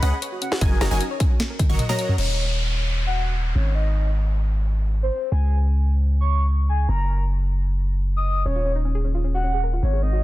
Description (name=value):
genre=future bass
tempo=153 BPM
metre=4/4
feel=half-time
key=Eb minor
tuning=A4 = 440 Hz
part: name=soft octave-layered synth lead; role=melody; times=0.0-10.2 s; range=C5 to Eb6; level=-29 LUFS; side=left 1 dB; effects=chorus, phaser, sidechain pumping, digital delay
part: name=soft round pluck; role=arpeggios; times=0.0-2.1, 8.5-10.2 s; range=C4 to Eb5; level=-32 LUFS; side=left 2 dB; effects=chorus, sidechain pumping, digital delay
part: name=wide unison pluck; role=arpeggios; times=0.0-2.2 s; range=Gb5 to Db6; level=-35 LUFS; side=right 1 dB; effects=sidechain pumping
part: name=supersaw stab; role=riff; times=0.0-2.2 s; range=Gb3 to Db6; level=-30 LUFS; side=right 1 dB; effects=sidechain pumping, low-pass filter, digital delay
part: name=long sustained 808-style bass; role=bass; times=0.0-10.2 s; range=Eb1 to Db2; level=-20 LUFS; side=equal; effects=sidechain pumping
part: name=trap drum kit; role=drums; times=0.0-2.3 s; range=crash cymbal, hi-hat, snare drum, toms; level=-26 LUFS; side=left 1 dB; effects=none
part: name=electronic kick drum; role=drums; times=0.6-1.7 s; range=none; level=-20 LUFS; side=equal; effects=none
part: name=downlifter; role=sound effects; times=2.2-5.3 s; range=none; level=-31 LUFS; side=equal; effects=none
room=digital ambience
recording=dense, heavily limited modern master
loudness=-20 LUFS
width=side -16 dB against mid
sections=0.0-2.2 A section; 2.2-10.2 B section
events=drop 0.0-2.2; drum fill 1.6-2.2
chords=0.0 Db9sus4; 0.6 Gb6; 2.2 Ebm7; 3.6 Abadd11; 5.3 Db5; 6.9 Gb6; 8.5 Ebm11